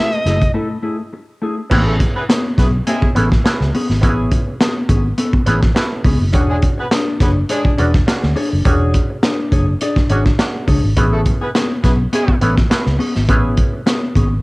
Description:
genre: funk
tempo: 104 BPM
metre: 4/4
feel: straight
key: unclear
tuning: A4 = 439 Hz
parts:
  - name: nasal lead guitar with a parked wah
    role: melody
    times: 0.0-0.5 s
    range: E5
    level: -20 LUFS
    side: equal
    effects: overdrive, cassette tape
  - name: mellow electric guitar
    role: accompaniment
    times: 0.0-14.3 s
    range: A3 to D5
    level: -20 LUFS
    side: left 2 dB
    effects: cassette tape
  - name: auto-wah clav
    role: stabs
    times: 0.0-13.8 s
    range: A3 to B4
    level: -22 LUFS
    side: right 2 dB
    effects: cassette tape
  - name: crunchy breakbeat drum kit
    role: drums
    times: 0.1-14.3 s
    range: crash cymbal, hi-hat, kick drum, snare drum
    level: -16 LUFS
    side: equal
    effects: cassette tape
  - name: vintage muted fingered electric bass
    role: bass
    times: 0.3-14.4 s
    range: E1 to D2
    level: -17 LUFS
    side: equal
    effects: none
  - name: warm horn section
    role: second line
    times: 1.9-12.4 s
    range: G#3 to B4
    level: -24 LUFS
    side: right 1 dB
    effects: cassette tape
room: light reverb, studio ambience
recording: home recording on cassette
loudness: -13 LUFS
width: side -23 dB against mid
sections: 0.0-1.7 A section; 1.7-14.4 B section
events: break 0.5-1.7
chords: 0.0 F#m9; 1.7 Amaj9; 6.3 E13; 11.0 Amaj9

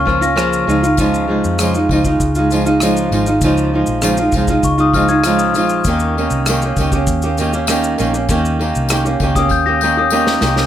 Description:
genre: acoustic pop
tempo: 99 BPM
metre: 4/4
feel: straight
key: unclear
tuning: A4 = 440 Hz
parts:
  - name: glockenspiel with rubber mallets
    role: second line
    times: 0.0-0.7, 4.6-10.7 s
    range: Db6 to Bb6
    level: -19 LUFS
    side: left 6 dB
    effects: none
  - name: flamenco guitar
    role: accompaniment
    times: 0.0-10.7 s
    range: Db3 to G4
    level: -15 LUFS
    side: right 2 dB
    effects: none
  - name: vintage muted fingered electric bass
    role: bass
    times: 0.0-10.7 s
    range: Ab1 to F2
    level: -20 LUFS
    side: equal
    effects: none
  - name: unplugged drum kit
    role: drums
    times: 0.1-10.7 s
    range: kick drum, rim click, shaker, snare drum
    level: -22 LUFS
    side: equal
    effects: none
  - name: tambourine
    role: percussion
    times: 1.0-10.6 s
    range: none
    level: -27 LUFS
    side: left 8 dB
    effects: none
room: moderate studio reverb, RT60 0.5 s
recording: none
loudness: -12 LUFS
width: side -11 dB against mid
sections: 0.0-10.7 A section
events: drum fill 9.5-10.7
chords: 0.0 Bbm; 0.7 Dbadd9; 5.9 Eb7

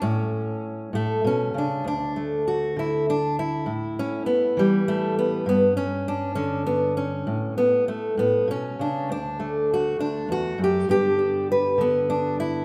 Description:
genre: folk, solo fingerstyle acoustic guitar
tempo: 67 BPM (dotted quarters)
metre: 6/8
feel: straight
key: D major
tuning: A4 = 438 Hz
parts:
  - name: fingerpicked steel-string acoustic guitar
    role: solo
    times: 0.0-12.6 s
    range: D2 to B4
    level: -24 LUFS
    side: equal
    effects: none
room: moderate concert hall reverb, RT60 1.9 s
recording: recorded in a church or concert hall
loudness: -24 LUFS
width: mono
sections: 0.0-1.9 A section; 1.9-12.6 B section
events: none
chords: 0.0 A; 1.9 D5; 3.7 A5; 5.5 G5; 7.3 A; 9.1 D; 10.9 G

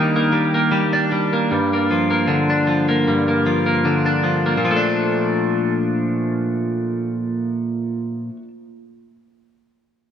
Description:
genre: indie pop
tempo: 77 BPM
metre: 4/4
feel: swing 55% on 16ths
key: Bb major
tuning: A4 = 440 Hz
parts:
  - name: twelve-string electric guitar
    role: accompaniment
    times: 0.0-8.5 s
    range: G2 to D4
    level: -17 LUFS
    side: equal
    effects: lush chorus, warbly pitch drift
room: wet lush hall reverb, RT60 2.3 s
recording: rough home demo mix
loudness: -17 LUFS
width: side -8 dB against mid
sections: 0.0-4.6 A section; 4.6-7.8 B section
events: none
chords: 0.0 Ebmaj7; 1.5 Gm7; 4.6 Bbmaj7

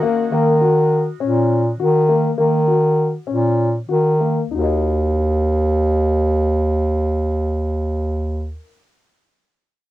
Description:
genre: contemporary instrumental, chamber music in an uneven meter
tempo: 200 BPM (eighths)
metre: 7/8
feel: uneven beats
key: Eb minor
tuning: A4 = 436 Hz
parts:
  - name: dark concert grand piano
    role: arpeggios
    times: 0.0-8.7 s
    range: Bb3 to Eb5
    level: -22 LUFS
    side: left 7 dB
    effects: cassette tape
  - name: warm bass clarinet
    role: bass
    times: 0.3-8.6 s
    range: Eb2 to Eb3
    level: -16 LUFS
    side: right 1 dB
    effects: transformer saturation
room: little or no reverb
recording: home recording on cassette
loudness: -15 LUFS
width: side -15 dB against mid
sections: 0.3-4.5 A section; 4.5-8.8 B section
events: slowing down 0.3-4.5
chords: 0.3 Ebm7; 4.5 Ebm

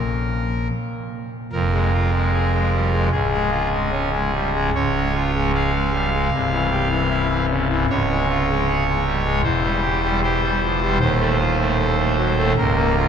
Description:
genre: classical, chorale-style piece for pipe organ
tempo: 76 BPM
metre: 4/4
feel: rubato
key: F minor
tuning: A4 = 440 Hz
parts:
  - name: pipe organ, trumpet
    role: solo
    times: 0.0-13.1 s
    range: C1 to F5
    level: -18 LUFS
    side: equal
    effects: none
room: wet cathedral reverb, RT60 6.0 s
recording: none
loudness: -18 LUFS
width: side -8 dB against mid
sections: 0.0-1.5 A section; 1.5-13.1 B section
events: none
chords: 0.0 N.C.; 1.5 Fm; 3.1 Db; 6.3 C; 7.9 Db5; 9.4 C/E; 11.0 F7/Eb (rootless); 12.6 Bbm/Db

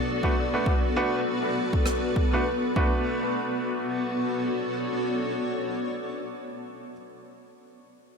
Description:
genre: ambient dub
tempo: 100 BPM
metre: 4/4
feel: swing 57% on 16ths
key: B minor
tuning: A4 = 439 Hz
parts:
  - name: granular cloud pad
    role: sustained chords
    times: 0.0-6.2 s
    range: B3 to D5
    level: -28 LUFS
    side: left 1 dB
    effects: built-in reverb
  - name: bright upright piano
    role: stabs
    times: 0.2-6.9 s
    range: A3 to B4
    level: -30 LUFS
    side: right 2 dB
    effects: low-pass filter, dub echo
  - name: electronic kick drum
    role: drums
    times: 0.2-2.9 s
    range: none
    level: -26 LUFS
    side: equal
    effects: overdrive
  - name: rim click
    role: drums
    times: 1.9-2.0 s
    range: none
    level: -36 LUFS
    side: right 1 dB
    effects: dub echo
room: wet concert hall reverb, RT60 2.0 s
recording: none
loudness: -24 LUFS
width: side -5 dB against mid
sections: 0.0-3.1 A section; 3.1-5.5 B section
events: none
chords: 0.0 Bm7

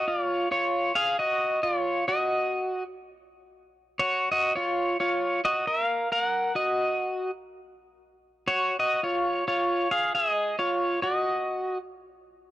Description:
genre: hawaiian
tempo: 107 BPM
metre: 4/4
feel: swing 58% on 8ths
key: unclear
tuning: A4 = 442 Hz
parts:
  - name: pedal steel guitar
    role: solo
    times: 0.0-11.8 s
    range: E#4 to F#5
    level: -24 LUFS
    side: equal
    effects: none
room: light reverb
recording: dry, close 1970s-style studio recording, faint mains hum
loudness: -24 LUFS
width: side -14 dB against mid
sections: 0.1-12.5 A section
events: none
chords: 0.1 D#m9/E#; 2.3 N.C.; 4.5 F#maj7; 6.8 N.C.; 9.0 D#9sus4/E#; 11.2 N.C.

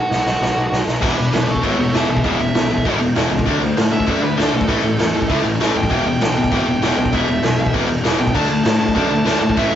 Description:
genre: punk rock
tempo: 196 BPM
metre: 4/4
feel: straight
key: unclear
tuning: A4 = 440 Hz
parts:
  - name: nasal lead guitar with a parked wah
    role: melody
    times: 0.0-9.8 s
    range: D4 to A5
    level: -23 LUFS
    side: right 1 dB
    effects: overdrive
  - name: fuzz picked electric bass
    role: bass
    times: 0.1-9.8 s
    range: E1 to A2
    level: -24 LUFS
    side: equal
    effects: overdrive
  - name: raw garage drum kit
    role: drums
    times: 0.1-9.8 s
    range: crash cymbal, kick drum, snare drum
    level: -20 LUFS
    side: equal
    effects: none
  - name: distorted electric guitar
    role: riff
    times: 1.0-9.8 s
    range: E2 to D4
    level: -19 LUFS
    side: left 4 dB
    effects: overdrive
  - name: raw garage guitar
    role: riff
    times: 1.0-9.8 s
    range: E2 to D4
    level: -23 LUFS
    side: right 4 dB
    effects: overdrive
room: moderate small room reverb, RT60 0.5 s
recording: rough rehearsal-room recording, warm saturation, nothing above 7.7 kHz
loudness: -15 LUFS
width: side -10 dB against mid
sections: 0.0-1.0 A section; 1.0-9.8 B section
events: drum fill 0.0-1.0; lead electric guitar solo 1.0-9.8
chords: 0.0 B5; 1.0 E5; 3.5 D5; 4.7 A5; 5.9 E5; 8.4 D5

